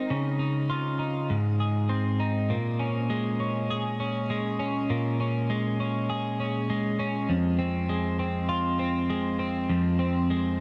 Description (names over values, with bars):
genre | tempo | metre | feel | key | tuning
dream pop | 100 BPM | 4/4 | straight | Bb minor | A4 = 441 Hz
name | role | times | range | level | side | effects
twelve-string electric guitar | solo | 0.0-10.6 s | F2 to Bb4 | -27 LUFS | equal | subtle chorus, delay
room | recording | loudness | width
light reverb | dark, warm production | -27 LUFS | mono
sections
0.0-2.5 A section; 2.5-10.6 B section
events
none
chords
0.1 Dbadd9; 1.3 Ab; 2.5 Bbm7; 7.3 Fm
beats
| 0.09 0.69 1.29 1.89 | 2.49 3.09 3.69 4.29 | 4.89 5.49 6.09 6.69 | 7.29 7.89 8.49 9.09 | 9.69 10.29